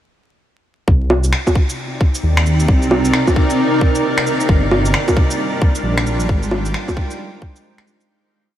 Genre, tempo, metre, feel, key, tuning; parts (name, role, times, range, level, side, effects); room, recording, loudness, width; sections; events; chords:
future garage; 133 BPM; 4/4; swing 61% on 16ths; C minor; A4 = 438 Hz
granular cloud pad; sustained chords; 1.7-8.1 s; C3 to G5; -19 LUFS; equal; built-in reverb, sidechain pumping
dark detuned saw bass; bass; 0.9-6.7 s; G1 to Eb2; -17 LUFS; equal; sidechain pumping
electronic kick drum; drums; 0.9-7.5 s; -14 LUFS; equal
electronic bongos, shaker and finger snaps; drums; 1.1-8.1 s; -20 LUFS; equal
moderate huge ambient reverb, RT60 7.9 s; dreamy mix soaked in reverb, vinyl crackle; -14 LUFS; side -12 dB against mid
0.9-8.1 groove
fade-out 5.7-8.1
0.9 Cm7; 4.5 Gm7; 6.3 Fm7/Ab